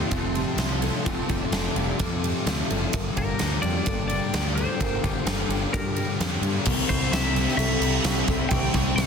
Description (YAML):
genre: rock, shoegaze and dream pop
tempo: 128 BPM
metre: 4/4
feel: straight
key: C mixolydian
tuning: A4 = 439 Hz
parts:
  - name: lush unison pad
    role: sustained chords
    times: 0.0-9.1 s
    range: Bb3 to E6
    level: -36 LUFS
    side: right 1 dB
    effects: chorus, phaser
  - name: fingerpicked twelve-string acoustic guitar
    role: arpeggios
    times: 0.0-9.1 s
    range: G4 to A5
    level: -35 LUFS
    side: left 1 dB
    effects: lush chorus, slapback echo
  - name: thick fuzz guitar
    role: riff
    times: 0.0-9.1 s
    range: F2 to C4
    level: -29 LUFS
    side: left 11 dB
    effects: distortion, analog chorus
  - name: twangy electric guitar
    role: riff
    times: 0.0-9.1 s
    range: F2 to E4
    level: -36 LUFS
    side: right 17 dB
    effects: reverse reverb
  - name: growling picked electric bass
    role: bass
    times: 0.0-9.1 s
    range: F1 to G2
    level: -29 LUFS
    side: right 1 dB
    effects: overdrive
  - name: huge arena drum kit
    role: drums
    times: 0.1-9.1 s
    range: crash cymbal, kick drum, ride cymbal, snare drum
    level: -26 LUFS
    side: right 2 dB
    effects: soft clipping on kick
  - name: twelve-string electric guitar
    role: melody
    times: 3.2-9.1 s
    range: Bb4 to G5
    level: -31 LUFS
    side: left 3 dB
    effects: tremolo, slapback echo
  - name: tambourine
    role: percussion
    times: 6.7-9.1 s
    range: none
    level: -43 LUFS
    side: right 12 dB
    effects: none
room: small room ambience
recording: dense, heavily limited modern master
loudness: -22 LUFS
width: side -6 dB against mid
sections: 0.0-6.7 A section; 6.7-9.1 B section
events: none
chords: 0.0 Fmaj7; 2.9 Gm7; 6.7 C7